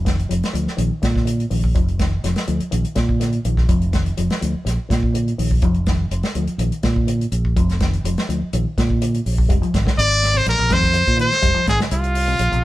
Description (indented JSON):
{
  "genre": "afrobeat",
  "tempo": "124 BPM",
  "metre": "4/4",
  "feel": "straight",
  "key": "unclear",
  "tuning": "A4 = 441 Hz",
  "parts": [
    { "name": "fingered electric bass", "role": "bass", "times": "0.0-12.6 s", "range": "F1 to Bb2", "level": "-20 LUFS", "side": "equal", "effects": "none" },
    { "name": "electric guitar with an envelope filter", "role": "arpeggios", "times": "0.1-12.6 s", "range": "C3 to G3", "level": "-26 LUFS", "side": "left 3 dB", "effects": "spring reverb" },
    { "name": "warm soul drum kit", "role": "drums", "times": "0.1-12.6 s", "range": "hi-hat, kick drum, snare drum", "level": "-21 LUFS", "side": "equal", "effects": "none" },
    { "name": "brilliant trumpet", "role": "melody", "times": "10.0-12.6 s", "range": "F4 to D5", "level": "-17 LUFS", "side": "equal", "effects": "none" }
  ],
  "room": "light reverb",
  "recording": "band playing live in one room",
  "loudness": "-16 LUFS",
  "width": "side -16 dB against mid",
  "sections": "0.0-9.5 A section; 9.5-12.6 B section",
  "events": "none",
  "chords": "0.0 Dm/F; 0.8 Bbsus4; 1.8 N.C.; 2.7 Bbsus4; 3.7 N.C.; 4.7 Bbsus4; 5.6 N.C.; 6.6 Bbsus4; 7.6 N.C.; 8.5 Bbsus4; 9.5 Fm6; 10.5 Bbsus24; 11.4 F5",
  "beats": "0.30 0.79 1.27 | 1.75 2.24 2.72 3.21 | 3.69 4.17 4.66 5.14 | 5.63 6.11 6.60 7.08 | 7.57 8.05 8.53 9.02 | 9.50 9.98 10.47 10.95 | 11.43 11.91 12.40"
}